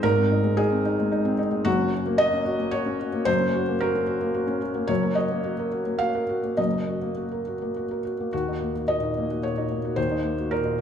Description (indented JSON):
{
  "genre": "neoclassical minimalist piano",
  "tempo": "110 BPM",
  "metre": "3/4",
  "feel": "rubato",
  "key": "Eb dorian",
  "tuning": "A4 = 440 Hz",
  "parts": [
    { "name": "felt-muted upright piano", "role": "solo", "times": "0.0-10.8 s", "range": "Gb1 to F5", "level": "-22 LUFS", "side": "equal", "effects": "none" }
  ],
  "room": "moderate recital hall reverb, RT60 1.6 s",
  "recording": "none",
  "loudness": "-22 LUFS",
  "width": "side -8 dB against mid",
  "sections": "0.0-8.3 A section; 8.3-10.8 B section",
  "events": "none",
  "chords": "0.0 Ab; 1.7 Gb; 4.9 Ebm/Gb; 8.3 Ebm"
}